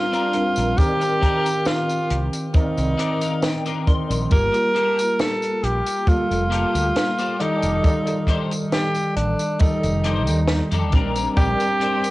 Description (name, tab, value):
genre	vaporwave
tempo	68 BPM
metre	4/4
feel	straight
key	C dorian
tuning	A4 = 444 Hz
part	warm tenor saxophone	melody	0.0-12.1 s	D4 to Bb4	-22 LUFS	equal	cassette tape, tape echo, plate reverb
part	bell-like tine electric piano	accompaniment	0.0-12.1 s	Eb3 to D5	-25 LUFS	equal	ensemble chorus, cassette tape
part	electric guitar at the edge of break-up	riff	0.1-12.0 s	Bb3 to C6	-29 LUFS	left 5 dB	ensemble chorus, cassette tape, tape echo
part	compact cocktail drum kit	drums	0.1-12.1 s	hi-hat, snare drum, tambourine	-28 LUFS	equal	studio ambience, cassette tape
part	mellow fretless electric bass	bass	0.6-11.5 s	F1 to F2	-23 LUFS	equal	transformer saturation
part	kick drum	drums	0.8-11.6 s	none	-17 LUFS	equal	studio ambience, cassette tape
room	light reverb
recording	home recording on cassette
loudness	-18 LUFS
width	side -18 dB against mid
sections	0.0-12.1 A section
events	clean electric guitar fill 2.5-4.3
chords	0.0 Bb69; 0.8 Cm9; 4.3 Gm9; 7.4 F13; 10.9 Bb69